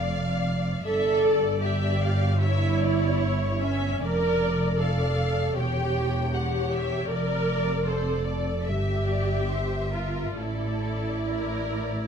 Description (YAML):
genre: classical, slow romantic movement for string orchestra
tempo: 66-80 BPM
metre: 4/4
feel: rubato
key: D minor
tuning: A4 = 439 Hz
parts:
  - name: muted symphonic violin section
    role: melody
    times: 0.0-12.1 s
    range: C#5 to E5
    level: -35 LUFS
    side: left 6 dB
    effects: none
  - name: muted symphonic violin section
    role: second line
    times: 0.0-12.1 s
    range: A4 to G5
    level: -34 LUFS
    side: left 2 dB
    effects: none
  - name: muted symphonic viola section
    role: accompaniment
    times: 0.0-12.1 s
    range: C#4 to Bb4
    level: -28 LUFS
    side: right 2 dB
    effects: none
  - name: muted symphonic cello section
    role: bass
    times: 0.0-12.1 s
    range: E2 to A2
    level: -30 LUFS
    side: right 1 dB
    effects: none
  - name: muted symphonic double bass section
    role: bass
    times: 0.0-12.1 s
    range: E1 to A1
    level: -29 LUFS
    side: right 1 dB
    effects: none
room: light reverb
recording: close, detailed microphones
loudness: -23 LUFS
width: side -7 dB against mid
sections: 0.0-12.1 A section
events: none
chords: 0.0 Dm/F; 0.8 Fmaj13/G; 2.4 C#dim/G; 4.0 Dm/F; 5.6 C#dim/E; 7.1 Dm/F; 8.7 Gm6; 10.4 Asus4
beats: 0.07 | 0.85 1.62 2.40 3.18 | 4.02 4.79 5.56 6.32 | 7.08 7.88 8.68 9.50 | 10.38 11.28